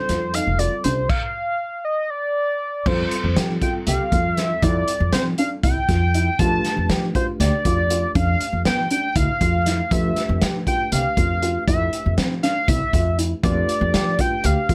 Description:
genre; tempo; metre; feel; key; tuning
progressive instrumental, band music in an uneven meter; 238 BPM (eighths); 7/8; straight; F lydian; A4 = 437 Hz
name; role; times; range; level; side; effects
lead with added fifth; melody; 0.0-14.7 s; C5 to A5; -25 LUFS; equal; chorus
mellow tine electric piano; accompaniment; 0.0-14.7 s; G3 to B4; -34 LUFS; equal; none
dark baby grand piano; arpeggios; 0.1-14.7 s; B3 to G4; -29 LUFS; equal; none
upright bass; bass; 0.1-14.7 s; F1 to F3; -24 LUFS; equal; none
vintage drum kit; drums; 0.1-14.7 s; crash cymbal, hi-hat, kick drum, snare drum; -26 LUFS; equal; none
room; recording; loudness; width
little or no reverb; none; -21 LUFS; mono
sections
0.0-2.9 A section; 2.9-14.7 B section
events
stop 1.1-2.9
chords
0.0 F; 1.1 N.C.; 2.9 Fmaj7; 6.4 G9; 9.9 Fmaj7; 13.4 G9/F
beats
0.08 0.34 0.59 0.84 | 1.09 1.35 1.60 1.85 2.10 2.35 2.61 | 2.86 3.11 3.36 3.62 3.87 4.12 4.37 | 4.62 4.88 5.13 5.38 5.63 5.88 6.14 | 6.39 6.64 6.89 7.14 7.40 7.65 7.90 | 8.15 8.40 8.65 8.91 9.16 9.41 9.66 | 9.91 10.17 10.42 10.67 10.92 11.17 11.42 | 11.68 11.93 12.18 12.43 12.68 12.93 13.19 | 13.44 13.69 13.94 14.19 14.44 14.70

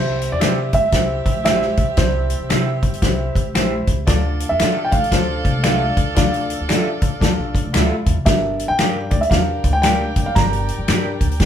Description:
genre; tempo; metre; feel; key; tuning
uptempo 1960s-style soul; 115 BPM; 4/4; swing 63% on 8ths; unclear; A4 = 440 Hz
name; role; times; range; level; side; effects
warm grand piano; melody; 0.0-11.4 s; C5 to Bb5; -22 LUFS; right 2 dB; none
dark saxophone section; second line; 0.0-11.5 s; G4 to G5; -30 LUFS; right 2 dB; none
warm upright piano; accompaniment; 0.0-11.5 s; G2 to F5; -27 LUFS; left 3 dB; none
upright bass; bass; 0.0-11.5 s; Gb1 to D3; -23 LUFS; equal; none
natural country drum kit; drums; 0.2-11.5 s; hi-hat, kick drum, snare drum; -18 LUFS; equal; none
congas; percussion; 0.2-11.3 s; none; -31 LUFS; right 1 dB; none
electric guitar through a small old amp; stabs; 0.4-11.1 s; E4 to E5; -26 LUFS; right 4 dB; warbly pitch drift
finger snaps; percussion; 0.4-11.0 s; none; -28 LUFS; left 3 dB; none
room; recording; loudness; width
wet studio reverb, RT60 0.6 s; band playing live in one room; -16 LUFS; side -9 dB against mid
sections
0.0-11.5 A section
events
none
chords
0.0 C; 4.1 Dmadd9; 8.3 Gm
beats
0.41 0.94 1.46 | 1.98 2.51 3.03 3.56 | 4.08 4.61 5.13 5.65 | 6.18 6.70 7.22 7.75 | 8.27 8.79 9.32 9.84 | 10.36 10.88 11.40

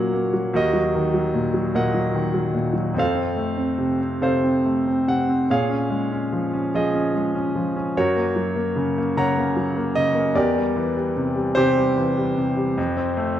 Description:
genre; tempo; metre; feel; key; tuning
classical, lyrical solo piano; 49 BPM (dotted quarters); 6/8; rubato; Bb minor; A4 = 440 Hz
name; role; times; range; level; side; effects
bright grand piano; solo; 0.0-13.4 s; Eb2 to Bb5; -19 LUFS; equal; none
room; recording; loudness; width
moderate concert hall reverb, RT60 2.0 s; dark, warm production; -19 LUFS; side -11 dB against mid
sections
0.0-13.4 A section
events
none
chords
0.0 Gb/Bb; 0.6 Ebm; 3.0 F; 5.5 Bbm7; 8.0 Gb; 10.3 C7/E; 12.8 F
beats
| 0.55 1.76 | 2.97 4.22 | 5.49 6.74 | 7.96 9.15 | 10.35 11.57 | 12.78

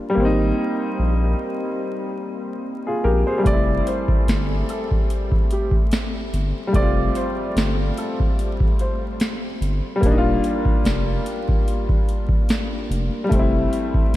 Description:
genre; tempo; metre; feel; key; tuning
lo-fi hip hop; 73 BPM; 4/4; swing 55% on 16ths; F major; A4 = 439 Hz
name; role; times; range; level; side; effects
warm upright piano; accompaniment; 0.0-14.2 s; G3 to C5; -23 LUFS; left 1 dB; cassette tape, low-pass filter
saturated sub bass; bass; 0.2-14.2 s; Eb1 to Bb1; -22 LUFS; equal; none
warm upright piano; melody; 3.5-9.0 s; G4 to D5; -30 LUFS; right 2 dB; low-pass filter, tape echo
booming analog drum machine; drums; 3.5-14.2 s; hi-hat, kick drum, snare drum; -21 LUFS; equal; none
room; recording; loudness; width
light reverb; vinyl crackle; -18 LUFS; side -15 dB against mid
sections
0.0-14.2 A section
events
none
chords
0.2 Abmaj9; 3.4 Fmaj9; 10.0 Ebmaj9 (rootless); 13.3 Fmaj9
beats
| 0.16 0.98 1.80 2.63 | 3.45 4.27 5.09 5.91 | 6.74 7.56 8.38 9.20 | 10.02 10.85 11.67 12.49 | 13.31 14.13

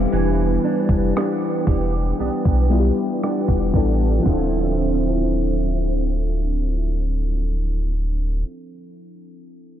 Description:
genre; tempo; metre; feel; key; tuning
contemporary R&B; 58 BPM; 4/4; straight; D dorian; A4 = 442 Hz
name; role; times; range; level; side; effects
FM electric piano with soft pad layer; accompaniment; 0.0-9.8 s; F3 to F5; -24 LUFS; left 4 dB; chorus
fingerpicked steel-string acoustic guitar; arpeggios; 0.0-8.6 s; D3 to G4; -25 LUFS; right 6 dB; ensemble chorus, diffuse ambient delay
warm sub bass; bass; 0.0-8.4 s; D1 to B1; -21 LUFS; equal; none
crisp 8-bit digital drum machine; drums; 0.9-4.5 s; crash cymbal, kick drum, rim click; -21 LUFS; equal; none
room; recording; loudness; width
light reverb, digital ambience; low-pass filter; -18 LUFS; side -11 dB against mid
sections
0.0-4.3 A section; 4.3-8.4 B section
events
filter sweep 0.0-4.3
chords
0.0 Em7; 4.3 Dm9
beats
| 0.12 1.15 2.19 3.22 | 4.26 5.29 6.33 7.36

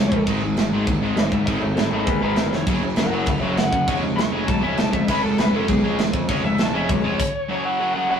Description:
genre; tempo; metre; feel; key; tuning
punk rock; 199 BPM; 4/4; straight; unclear; A4 = 440 Hz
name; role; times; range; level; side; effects
lead guitar through a small cranked amp; melody; 0.0-8.2 s; G#4 to C#6; -25 LUFS; left 2 dB; overdrive
distorted electric guitar; riff; 0.0-8.2 s; F#2 to C#4; -23 LUFS; equal; distortion
fuzz guitar; riff; 0.0-7.2 s; F#2 to C#4; -26 LUFS; equal; distortion
fuzz picked electric bass; bass; 0.0-7.2 s; E#1 to G#2; -26 LUFS; equal; overdrive
tight metal drum kit; drums; 0.1-7.3 s; crash cymbal, kick drum, snare drum; -24 LUFS; right 1 dB; none
room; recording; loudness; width
wet small room reverb, RT60 0.5 s; rough rehearsal-room recording; -18 LUFS; side -7 dB against mid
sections
0.0-7.5 A section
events
lead electric guitar solo 0.0-7.5; drum fill 2.5; stop 7.2-7.5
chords
0.3 G#5; 2.7 F#; 3.9 C#/E#; 7.5 F#5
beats
| 0.27 0.57 0.87 1.17 | 1.47 1.77 2.07 2.37 | 2.67 2.98 3.28 3.58 | 3.88 4.18 4.48 4.78 | 5.08 5.39 5.69 5.99 | 6.29 6.59 6.89 7.19 | 7.49 7.79 8.10

